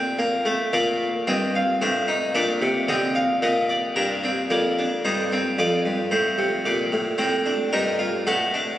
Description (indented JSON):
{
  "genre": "classical, baroque-style 3-part fugue for harpsichord",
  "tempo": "111 BPM",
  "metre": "3/4",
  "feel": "straight",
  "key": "Bb major",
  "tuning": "A4 = 439 Hz",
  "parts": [
    { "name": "harpsichord", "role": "solo", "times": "0.0-8.8 s", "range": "F2 to F5", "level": "-20 LUFS", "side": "equal", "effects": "none" }
  ],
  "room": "wet cathedral reverb, RT60 5.1 s",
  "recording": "recorded on a phone in the room, studio reverb, compression",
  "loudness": "-20 LUFS",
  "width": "side -13 dB against mid",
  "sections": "0.7-4.0 A section; 4.0-8.8 B section",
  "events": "none",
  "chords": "0.0 N.C.; 0.7 Bb; 1.8 Adim; 2.3 Bb; 4.0 Gm7; 5.0 Cm/G; 5.6 F; 6.7 Bb; 7.2 Am7b5; 8.3 D/A"
}